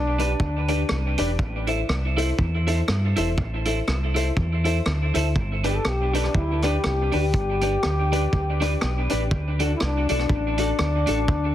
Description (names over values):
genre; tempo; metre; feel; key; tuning
ska; 121 BPM; 4/4; swing 58% on 8ths; G major; A4 = 440 Hz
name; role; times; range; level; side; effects
breathy trombone; melody; 0.0-1.2, 5.7-11.5 s; D4 to A4; -27 LUFS; left 2 dB; dub echo
fingered electric bass; bass; 0.0-11.5 s; E1 to G2; -24 LUFS; equal; none
electric guitar at the edge of break-up; accompaniment; 0.2-11.2 s; D4 to C5; -29 LUFS; right 4 dB; dub echo
dark upright piano; stabs; 0.2-11.2 s; D4 to E5; -30 LUFS; left 4 dB; dub echo
vintage drum kit; drums; 0.2-11.4 s; hi-hat, kick drum, rim click; -27 LUFS; equal; none
room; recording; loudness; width
light reverb; heavily compressed radio sound, multiband compression; -20 LUFS; side -12 dB against mid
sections
0.0-11.5 A section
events
none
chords
0.0 G; 1.4 Am; 5.4 G; 9.3 D